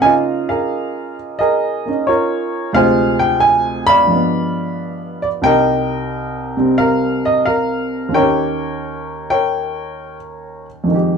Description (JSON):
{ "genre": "solo jazz", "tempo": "89 BPM", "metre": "4/4", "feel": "swing 69% on 8ths, rubato", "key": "unclear", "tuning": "A4 = 437 Hz", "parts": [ { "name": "warm upright piano", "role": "solo", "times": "0.0-11.2 s", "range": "C2 to Cb6", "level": "-14 LUFS", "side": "right 1 dB", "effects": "none" } ], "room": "wet studio ambience, RT60 0.5 s", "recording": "band playing live in one room", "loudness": "-14 LUFS", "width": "side -6 dB against mid", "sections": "0.0-10.9 A section", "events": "none", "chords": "0.0 Db69; 2.8 Dm7b5; 4.1 G7b9; 5.4 Cm7; 8.1 Eb7" }